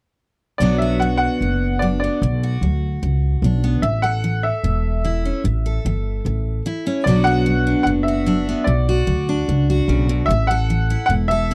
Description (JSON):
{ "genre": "honky-tonk and classic country", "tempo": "149 BPM", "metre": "4/4", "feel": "straight", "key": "B minor", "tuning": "A4 = 438 Hz", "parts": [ { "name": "bright upright piano", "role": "melody", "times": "0.6-11.5 s", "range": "D5 to F#5", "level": "-25 LUFS", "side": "equal", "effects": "none" }, { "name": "picked steel-string acoustic guitar", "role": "accompaniment", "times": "0.6-11.5 s", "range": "F#2 to A4", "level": "-24 LUFS", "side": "equal", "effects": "none" }, { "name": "upright bass", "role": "bass", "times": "0.6-11.5 s", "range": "E1 to D2", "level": "-22 LUFS", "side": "equal", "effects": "none" } ], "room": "little or no reverb", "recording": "dry, close 1970s-style studio recording", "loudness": "-19 LUFS", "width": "mono", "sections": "0.6-7.1 A section; 7.1-11.5 B section", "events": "none", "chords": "0.6 Bm; 3.8 A5; 7.1 Bm; 10.3 A5" }